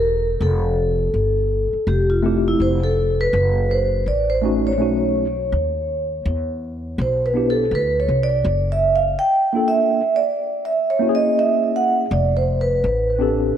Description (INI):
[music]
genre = hip hop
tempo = 82 BPM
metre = 4/4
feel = swing 62% on 16ths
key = unclear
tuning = A4 = 436 Hz
[part]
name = vibraphone with soft mallets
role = melody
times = 0.0-13.3 s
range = E4 to G5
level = -19 LUFS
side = right 2 dB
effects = analog delay
[part]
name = upright bass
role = bass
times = 0.0-13.5 s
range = E1 to E2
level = -22 LUFS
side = left 1 dB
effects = none
[part]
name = mellow tine electric piano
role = accompaniment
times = 2.2-13.6 s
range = A3 to A4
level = -22 LUFS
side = left 1 dB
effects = overdrive, medium stereo tremolo
[sound]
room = moderate lush hall reverb, RT60 2.1 s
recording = dreamy mix soaked in reverb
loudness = -17 LUFS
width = side -9 dB against mid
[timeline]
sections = 0.0-13.6 A section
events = vibraphone solo 0.0-13.6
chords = 0.4 Fmaj7; 3.3 F#m; 4.8 B7; 6.3 E7(no3); 9.2 Bbmaj7#11; 10.6 F#9 (rootless); 12.1 F6